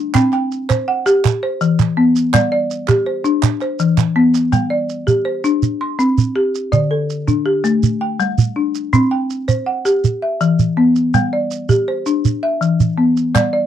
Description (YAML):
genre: southern african traditional, mbira-style interlocking cycle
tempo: 109 BPM (dotted quarters)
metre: 12/8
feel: straight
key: G major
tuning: A4 = 441 Hz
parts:
  - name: folk marimba with medium hard mallets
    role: arpeggios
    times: 0.0-13.7 s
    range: D3 to C6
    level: -15 LUFS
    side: left 2 dB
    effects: none
  - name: group handclap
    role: percussion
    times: 0.1-4.4, 13.4-13.5 s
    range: none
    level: -25 LUFS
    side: right 18 dB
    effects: none
  - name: shekere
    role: percussion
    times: 0.1-13.5 s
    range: none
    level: -16 LUFS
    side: right 5 dB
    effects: none
room: light reverb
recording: dry, close 1970s-style studio recording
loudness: -14 LUFS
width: side -10 dB against mid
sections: 0.0-4.5 A section; 4.5-13.4 A section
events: none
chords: 0.1 C5; 1.2 E5; 2.3 G5; 3.4 E5; 4.5 G5; 5.6 C5; 6.7 D5; 7.8 G5; 8.9 C5; 10.0 E5; 11.1 G5; 12.2 E5